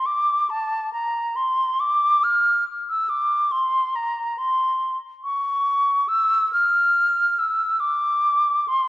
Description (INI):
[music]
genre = classical, baroque-style fantasia for unaccompanied flute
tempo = 70 BPM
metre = 4/4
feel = rubato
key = D minor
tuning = A4 = 440 Hz
[part]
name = mellow silver concert flute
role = solo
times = 0.0-8.9 s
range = A5 to F6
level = -19 LUFS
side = equal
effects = none
[sound]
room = moderate scoring stage reverb, RT60 2.0 s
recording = worn, warbling old tape, cassette tape, warbly pitch drift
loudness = -19 LUFS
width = side -18 dB against mid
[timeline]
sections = 0.0-8.9 A section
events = none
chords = none